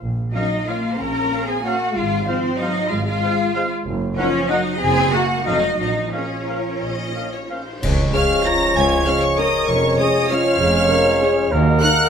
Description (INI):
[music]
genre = classical, orchestral ballroom waltz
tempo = 167-210 BPM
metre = 3/4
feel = rubato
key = Bb minor, Db major from 7.8 s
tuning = A4 = 435 Hz
[part]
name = rich studio double bass section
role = bass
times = 0.0-11.8 s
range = F1 to Eb2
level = -24 LUFS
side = right 2 dB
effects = none
[part]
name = mellow hollow large flute ensemble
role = second line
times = 0.3-12.1 s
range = C5 to Bb5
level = -26 LUFS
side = left 2 dB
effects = none
[part]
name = warm French horn section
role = sustained chords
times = 0.3-12.1 s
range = Ab3 to Bb4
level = -25 LUFS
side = left 5 dB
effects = none
[part]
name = mellow trumpet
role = stabs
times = 0.3-12.1 s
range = Bb4 to Gb5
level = -24 LUFS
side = right 1 dB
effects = none
[part]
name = clear studio cello section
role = bass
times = 0.3-11.8 s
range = Db2 to C5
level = -25 LUFS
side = right 2 dB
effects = none
[part]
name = clear studio violin section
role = melody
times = 0.4-12.1 s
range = Ab4 to Bb6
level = -24 LUFS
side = equal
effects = none
[part]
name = rich studio violin section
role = second line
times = 0.4-12.1 s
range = C5 to Bb5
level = -26 LUFS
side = left 1 dB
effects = none
[part]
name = warm studio viola section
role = accompaniment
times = 0.4-11.9 s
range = F3 to Db5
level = -26 LUFS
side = left 1 dB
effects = none
[part]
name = cymbal swell, clash cymbals and concert bass drum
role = percussion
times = 5.8-8.4 s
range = none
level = -28 LUFS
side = equal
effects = none
[part]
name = mellow bassoon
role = accompaniment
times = 7.8-12.1 s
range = Ab3 to Bb3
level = -26 LUFS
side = equal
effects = none
[part]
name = warm trombone section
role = sustained chords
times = 7.8-12.1 s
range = Eb3 to Eb4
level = -27 LUFS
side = right 4 dB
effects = none
[sound]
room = moderate scoring stage reverb, RT60 1.5 s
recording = none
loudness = -16 LUFS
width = side -7 dB against mid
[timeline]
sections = 0.0-7.8 A section; 7.8-12.1 B section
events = band accent 7.8-8.1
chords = 0.0 Bbm; 2.0 Fm/Ab; 3.9 Ebm/Gb; 4.8 Gb7; 5.5 F; 5.8 Bbm; 7.8 Db; 9.7 Db/F; 11.5 Ebm